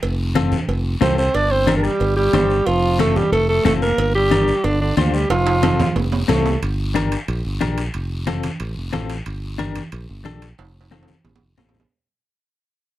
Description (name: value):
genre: latin, cumbia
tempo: 182 BPM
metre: 4/4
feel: straight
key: unclear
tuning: A4 = 444 Hz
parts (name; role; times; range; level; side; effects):
- fingered electric bass; bass; 0.0-11.8 s; F1 to D2; -22 LUFS; equal; none
- cowbell and timbales; percussion; 0.0-11.9 s; none; -28 LUFS; right 6 dB; none
- guiro; percussion; 0.0-11.9 s; none; -34 LUFS; left 3 dB; none
- clean electric guitar; accompaniment; 0.4-11.8 s; C4 to C5; -22 LUFS; left 8 dB; tremolo
- congas; percussion; 0.4-11.8 s; none; -25 LUFS; right 2 dB; none
- breathy alto saxophone; melody; 1.0-6.6 s; D4 to D5; -19 LUFS; equal; none
- breathy clarinet; second line; 1.0-6.6 s; D3 to D4; -26 LUFS; right 8 dB; none
room: light reverb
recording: dry, close 1970s-style studio recording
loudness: -17 LUFS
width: side -14 dB against mid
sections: 0.0-6.6 A section; 6.6-11.9 B section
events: drum fill 5.3-6.6, 10.6-11.9; fade-out 6.6-11.9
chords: 0.0 F; 1.3 Gm; 2.7 F; 4.0 Gm; 5.3 F; 6.6 Gm; 7.9 F; 9.3 Gm; 10.6 F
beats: | 0.03 0.36 0.69 1.02 | 1.35 1.68 2.00 2.33 | 2.67 3.00 3.32 3.65 | 3.98 4.31 4.64 4.97 | 5.30 5.63 5.96 6.29 | 6.62 6.95 7.28 7.61 | 7.94 8.27 8.60 8.93 | 9.26 9.59 9.92 10.25 | 10.58 10.91 11.24 11.58